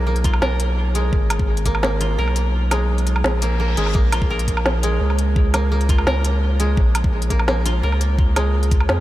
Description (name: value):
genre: half-time drum and bass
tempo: 170 BPM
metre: 4/4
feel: half-time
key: Bb phrygian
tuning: A4 = 440 Hz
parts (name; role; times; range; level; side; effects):
- koto; arpeggios; 0.0-9.0 s; Ab3 to Bb4; -25 LUFS; right 1 dB; diffuse ambient delay
- saturated sub bass; bass; 0.0-9.0 s; Ab1 to F2; -19 LUFS; equal; none
- electronic kick drum; drums; 0.2-1.7, 3.9-8.8 s; none; -19 LUFS; equal; none
- organic electronic drum kit; drums; 0.2-9.0 s; hi-hat, snare drum, woodblock; -24 LUFS; equal; overdrive
- reverse cymbal; sound effects; 3.4-4.0 s; none; -35 LUFS; left 5 dB; none
room: light reverb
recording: none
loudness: -16 LUFS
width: side -15 dB against mid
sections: 0.0-9.0 A section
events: kick drops out 2.5-4.0; reverse cymbal 3.4-4.0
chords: 0.0 Abm; 4.0 Bbm7